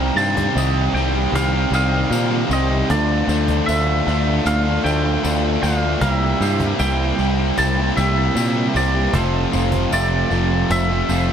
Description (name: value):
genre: rock, shoegaze and dream pop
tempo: 77 BPM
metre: 4/4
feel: straight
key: unclear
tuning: A4 = 444 Hz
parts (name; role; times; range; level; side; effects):
- twangy electric guitar; melody; 0.0-11.3 s; C5 to Bb5; -24 LUFS; equal; digital delay
- twangy electric guitar; arpeggios; 0.0-11.3 s; A4 to E5; -32 LUFS; right 10 dB; lush chorus, digital delay
- distorted electric guitar; riff; 0.0-11.3 s; F2 to D4; -24 LUFS; equal; overdrive
- overdriven semi-hollow guitar; riff; 0.0-11.3 s; F2 to G4; -25 LUFS; left 11 dB; wide subtle chorus
- overdriven semi-hollow guitar; riff; 0.0-11.3 s; F2 to G4; -24 LUFS; right 10 dB; reverse reverb
- picked electric bass; bass; 0.0-11.3 s; F1 to Bb2; -20 LUFS; equal; none
- tambourine; percussion; 0.2-11.3 s; none; -35 LUFS; left 10 dB; none
- cajon; drums; 0.4-10.9 s; none; -26 LUFS; equal; none
room: little or no reverb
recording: dark, warm production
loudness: -16 LUFS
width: side -8 dB against mid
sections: 0.0-11.3 A section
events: none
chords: 0.0 Cm7; 2.9 Dm9; 6.0 C7; 9.1 Fmaj7